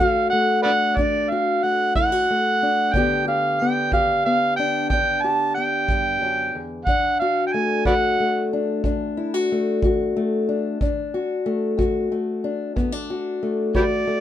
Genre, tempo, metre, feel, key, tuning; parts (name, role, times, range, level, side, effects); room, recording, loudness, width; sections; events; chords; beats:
acoustic country blues, solo or duo; 61 BPM (dotted quarters); 12/8; straight; D major; A4 = 438 Hz
overdriven harmonica; melody; 0.0-14.2 s; G4 to A5; -20 LUFS; right 2 dB
fingerpicked old ladder-braced acoustic guitar; accompaniment; 0.0-14.2 s; D2 to G4; -22 LUFS; left 3 dB
kick drum; drums; 1.0-13.9 s; -25 LUFS; right 1 dB
light reverb; minimal, uncompressed stereo recording; -19 LUFS; side -11 dB against mid
0.0-14.2 A section
0.0 D; 2.9 G; 6.9 D
0.97 1.95 | 2.94 3.92 4.90 5.89 | 6.87 7.85 8.84 9.82 | 10.80 11.79 12.77 13.75